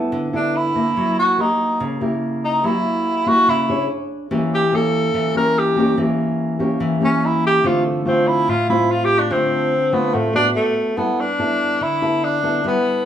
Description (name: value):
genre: bossa nova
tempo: 144 BPM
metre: 4/4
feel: straight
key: unclear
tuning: A4 = 440 Hz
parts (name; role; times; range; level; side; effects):
- nylon-string guitar; accompaniment; 0.0-13.1 s; A2 to C#5; -20 LUFS; equal; none
- clear tenor saxophone; melody; 0.4-13.1 s; A3 to Bb4; -18 LUFS; equal; none
room: moderate large studio reverb, RT60 0.9 s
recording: band playing live in one room, faint mains hum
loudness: -16 LUFS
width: side -10 dB against mid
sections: 0.0-11.0 A section; 11.0-13.1 B section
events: tenor saxophone solo 0.0-11.0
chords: 0.0 G69 (rootless); 1.0 F#7b9; 3.9 C#5; 4.3 A7b9/E (rootless); 7.6 Dm7; 10.6 F#madd11/A; 11.0 G69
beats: 0.14 0.56 | 0.97 1.39 1.81 2.22 | 2.64 3.06 3.48 3.89 | 4.31 4.73 5.14 5.56 | 5.98 6.39 6.81 7.23 | 7.64 8.06 8.48 8.89 | 9.31 9.73 10.14 10.56 | 10.98 11.40 11.81 12.23 | 12.65